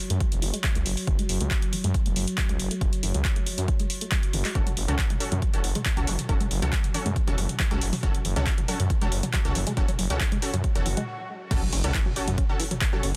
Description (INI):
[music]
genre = driving peak-time techno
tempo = 138 BPM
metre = 4/4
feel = straight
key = F# minor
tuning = A4 = 441 Hz
[part]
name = metallic inharmonic drone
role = drone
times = 0.0-13.2 s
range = F#3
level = -40 LUFS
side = equal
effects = chorus, built-in reverb, phaser, sidechain pumping
[part]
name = tight sequenced synth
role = riff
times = 0.1-13.1 s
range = E3 to C#4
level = -38 LUFS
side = equal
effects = chorus, sidechain pumping, delay
[part]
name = detuned saw bass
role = bass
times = 0.1-13.1 s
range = E1 to F#2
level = -30 LUFS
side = equal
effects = sidechain pumping
[part]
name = punchy analog drum machine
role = drums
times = 0.1-13.1 s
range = crash cymbal, handclaps, hi-hat, toms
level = -33 LUFS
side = equal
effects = overdrive, sidechain pumping on hats, sidechain pumping on toms, sidechain pumping on cymbals
[part]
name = electronic kick drum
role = drums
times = 0.2-12.9 s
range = none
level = -28 LUFS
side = equal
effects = overdrive
[part]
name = rave stab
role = stabs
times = 4.5-13.0 s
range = C#4 to A4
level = -36 LUFS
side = equal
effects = chorus, built-in reverb, sidechain pumping, delay
[part]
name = swell and impact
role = sound effects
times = 10.8-13.2 s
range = none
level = -38 LUFS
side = equal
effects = none
[sound]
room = little or no reverb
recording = dense, heavily limited modern master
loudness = -26 LUFS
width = mono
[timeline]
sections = 0.0-11.5 A section; 11.5-13.2 B section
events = filter sweep on synth arpeggio sound 0.0-11.5; swell 10.8-11.5; stop 11.1-11.5; drop 11.5-13.2; impact 11.5-13.2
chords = 0.0 F#m